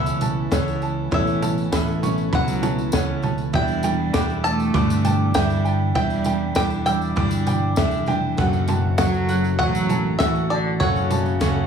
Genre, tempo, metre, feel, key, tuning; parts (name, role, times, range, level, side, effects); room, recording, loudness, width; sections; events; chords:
indie folk with a building arrangement; 99 BPM; 4/4; straight; A4 = 440 Hz
bluegrass banjo; melody; 0.0-11.7 s; C#5 to A5; -27 LUFS; left 1 dB; dub echo
felt-muted upright piano; accompaniment; 0.0-11.7 s; F#1 to E5; -32 LUFS; left 2 dB; dub echo
picked steel-string acoustic guitar; accompaniment; 0.0-11.7 s; E2 to F#4; -28 LUFS; left 8 dB; dub echo
warm upright piano; arpeggios; 0.0-11.7 s; C#5 to F#6; -28 LUFS; right 4 dB
fingered electric bass; bass; 0.0-11.7 s; E1 to C#2; -25 LUFS; equal
tambourine; percussion; 0.1-11.6 s; -39 LUFS; left 4 dB
compact cocktail drum kit; drums; 0.2-11.6 s; kick drum, snare drum, toms; -24 LUFS; right 2 dB
warm cello; second line; 2.3-11.7 s; C#3 to A3; -26 LUFS; right 5 dB
light reverb, small room ambience; echo-heavy mix, studio reverb; -18 LUFS; side -7 dB against mid
0.0-11.7 A section
0.0 Aadd9; 3.5 Em7; 8.4 F#m